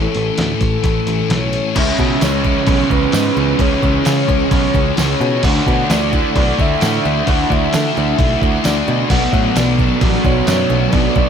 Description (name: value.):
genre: rock, shoegaze and dream pop.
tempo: 131 BPM.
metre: 4/4.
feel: straight.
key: unclear.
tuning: A4 = 440 Hz.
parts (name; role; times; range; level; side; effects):
soft octave-layered synth lead; melody; 0.0-11.3 s; A4 to F#5; -22 LUFS; left 3 dB; chorus, tape echo.
picked twelve-string acoustic guitar; arpeggios; 0.0-11.3 s; E3 to G#4; -29 LUFS; right 8 dB; wide subtle chorus, tape echo.
crunchy overdriven guitar; riff; 0.0-11.3 s; A2 to A4; -21 LUFS; right 9 dB; reverse reverb.
thick fuzz guitar; riff; 0.0-11.3 s; A2 to D4; -21 LUFS; left 9 dB; distortion, ensemble chorus.
picked electric bass; bass; 0.0-11.3 s; A1 to D3; -20 LUFS; equal; none.
clean 12-bit digital drum machine; drums; 0.1-11.3 s; crash cymbal, hi-hat, kick drum, snare drum; -19 LUFS; equal; none.
raw garage guitar; riff; 1.8-11.3 s; B2 to D4; -21 LUFS; equal; overdrive.
tambourine; percussion; 2.2-10.6 s; none; -31 LUFS; right 16 dB; none.
room: moderate lush hall reverb, RT60 2.1 s.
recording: dreamy mix soaked in reverb.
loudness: -13 LUFS.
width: side -7 dB against mid.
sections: 0.0-1.8 A section; 1.8-11.3 B section.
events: kick and snare drop out 8.9.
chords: 0.0 A; 1.8 C#m7; 5.4 Dadd9; 9.1 Bm7.